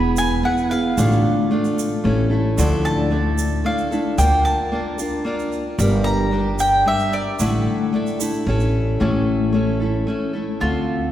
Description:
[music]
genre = acoustic folk duo or small band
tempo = 112 BPM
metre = 3/4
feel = straight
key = unclear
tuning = A4 = 440 Hz
[part]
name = mandolin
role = melody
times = 0.0-8.2, 10.6-11.1 s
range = F4 to B5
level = -22 LUFS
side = equal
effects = none
[part]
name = picked steel-string acoustic guitar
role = accompaniment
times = 0.0-11.1 s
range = A2 to B4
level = -20 LUFS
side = left 1 dB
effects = none
[part]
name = upright bass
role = bass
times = 0.0-11.1 s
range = E1 to D2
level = -22 LUFS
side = equal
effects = none
[part]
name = egg shaker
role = percussion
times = 0.2-8.7 s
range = none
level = -34 LUFS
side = right 7 dB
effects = none
[sound]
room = wet church reverb, RT60 3.3 s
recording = recorded in a church or concert hall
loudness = -17 LUFS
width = side -12 dB against mid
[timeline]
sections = 0.0-9.0 A section; 9.0-10.6 B section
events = none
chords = 0.0 E; 1.0 Dm/A; 2.1 A; 2.6 Dmadd9; 4.2 Bb/D; 5.8 Gm; 7.4 Asus4; 8.5 A

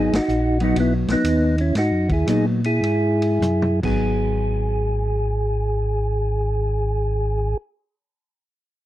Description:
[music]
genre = soul jazz organ trio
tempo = 91-130 BPM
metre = 4/4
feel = swing 67% on 8ths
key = G# minor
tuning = A4 = 440 Hz
[part]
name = percussive tonewheel organ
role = melody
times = 0.0-7.6 s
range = B3 to G#4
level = -22 LUFS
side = equal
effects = slow rotary speaker
[part]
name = hollow-body jazz guitar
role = accompaniment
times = 0.0-7.6 s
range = F#3 to D#4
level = -25 LUFS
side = left 2 dB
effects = none
[part]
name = mellow tonewheel organ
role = bass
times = 0.0-7.6 s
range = G#1 to A#2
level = -22 LUFS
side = equal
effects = chorus vibrato, slow rotary speaker
[part]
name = vintage drum kit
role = drums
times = 0.1-3.9 s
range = crash cymbal, hi-hat, kick drum, ride cymbal, snare drum, toms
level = -29 LUFS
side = equal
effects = none
[sound]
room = little or no reverb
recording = dry, close 1970s-style studio recording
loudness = -18 LUFS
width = side -14 dB against mid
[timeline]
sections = 0.0-4.0 A section; 4.0-8.9 B section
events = slowing down 0.0-4.0; band accent 0.1; drum fill 3.4-4.0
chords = 0.0 G#m7

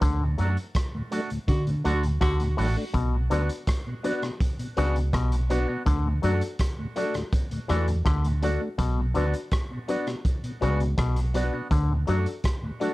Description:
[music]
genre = roots reggae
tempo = 82 BPM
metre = 4/4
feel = straight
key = unclear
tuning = A4 = 441 Hz
[part]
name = auto-wah clav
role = riff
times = 0.0-12.2 s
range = A2 to D4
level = -32 LUFS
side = left 4 dB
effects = none
[part]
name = vintage muted fingered electric bass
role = bass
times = 0.0-12.3 s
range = A1 to D3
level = -24 LUFS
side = equal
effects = none
[part]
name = crunchy breakbeat drum kit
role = drums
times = 0.0-12.9 s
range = hi-hat, kick drum, rim click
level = -28 LUFS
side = equal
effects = none
[part]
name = mellow tonewheel organ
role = accompaniment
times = 0.2-12.9 s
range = D2 to D4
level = -34 LUFS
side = equal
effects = chorus vibrato, slow rotary speaker
[part]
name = electric guitar with an envelope filter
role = accompaniment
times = 0.4-12.9 s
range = A3 to F#4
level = -35 LUFS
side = right 4 dB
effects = tape echo
[part]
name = warm tenor saxophone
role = second line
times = 1.5-2.7 s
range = F#4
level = -34 LUFS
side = right 1 dB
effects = tape echo
[part]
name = dark upright piano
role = stabs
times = 3.3-12.9 s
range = D4 to D5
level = -31 LUFS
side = left 3 dB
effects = none
[sound]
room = light reverb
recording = dark, warm production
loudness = -23 LUFS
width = side -18 dB against mid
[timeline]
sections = 0.0-12.9 A section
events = band accent 0.0-2.9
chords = 0.0 D; 2.9 Bm; 5.9 D; 8.8 Bm; 11.7 D

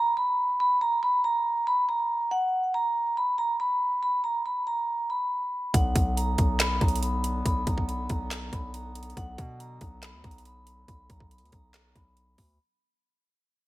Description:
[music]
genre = hip hop, trap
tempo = 140 BPM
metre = 4/4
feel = half-time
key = B harmonic minor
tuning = A4 = 441 Hz
[part]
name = vibraphone with medium mallets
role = melody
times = 0.0-12.6 s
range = F#5 to B5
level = -26 LUFS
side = right 1 dB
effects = low-pass filter, digital delay
[part]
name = warm woodwind section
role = sustained chords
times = 5.7-12.6 s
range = D3 to B3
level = -38 LUFS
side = left 2 dB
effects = none
[part]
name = distorted 808-style bass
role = bass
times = 5.7-12.6 s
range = B1 to B2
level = -31 LUFS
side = equal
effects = distortion
[part]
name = trap drum kit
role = drums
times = 5.7-12.5 s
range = handclaps, hi-hat, kick drum, snare drum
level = -27 LUFS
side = equal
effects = gated reverb
[sound]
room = light reverb, small room ambience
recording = bright 1980s-style digital production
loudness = -24 LUFS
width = side -16 dB against mid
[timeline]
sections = 0.0-12.6 A section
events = fade-out 0.0-12.6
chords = 0.0 N.C.; 5.7 Bm

